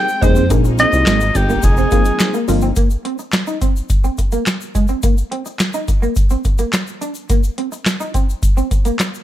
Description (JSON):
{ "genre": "early-eighties boogie funk", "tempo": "106 BPM", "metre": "4/4", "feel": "straight", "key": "unclear", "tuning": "A4 = 440 Hz", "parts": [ { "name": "breathy alto saxophone", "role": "melody", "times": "0.0-2.5 s", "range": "G4 to G5", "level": "-17 LUFS", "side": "equal", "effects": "slapback echo" }, { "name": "funky polysynth comp", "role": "accompaniment", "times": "0.0-2.7 s", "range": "F3 to Ab4", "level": "-21 LUFS", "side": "left 1 dB", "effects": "chorus" }, { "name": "bright studio string section", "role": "sustained chords", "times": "0.0-2.7 s", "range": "Ab3 to G5", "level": "-29 LUFS", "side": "left 1 dB", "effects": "none" }, { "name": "egg shaker", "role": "percussion", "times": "0.1-9.2 s", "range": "none", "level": "-34 LUFS", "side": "left 8 dB", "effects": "none" }, { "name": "electric guitar through a small old amp", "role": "riff", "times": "0.2-9.0 s", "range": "Ab3 to Eb4", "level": "-23 LUFS", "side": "right 2 dB", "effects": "analog chorus" }, { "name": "chorused synth bass", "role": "bass", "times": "0.2-2.7 s", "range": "F1 to C2", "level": "-16 LUFS", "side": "equal", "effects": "none" }, { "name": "booming analog drum machine", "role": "drums", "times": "0.2-9.1 s", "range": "handclaps, hi-hat, kick drum, snare drum", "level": "-16 LUFS", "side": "equal", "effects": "none" } ], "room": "light reverb, small room reverb", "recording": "none", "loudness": "-14 LUFS", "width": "side -13 dB against mid", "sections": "0.0-2.8 A section; 2.8-9.2 B section", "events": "none", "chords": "0.0 Abmaj9; 2.8 Cm7; 3.9 Abadd9; 5.0 Bbsus24; 5.9 Bbadd9; 7.3 Cm7; 8.4 Abadd9 (rootless)", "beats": "| 0.51 1.07 1.64 2.20 | 2.77 3.34 3.90 4.47 | 5.03 5.60 6.17 6.73 | 7.30 7.86 8.43 9.00" }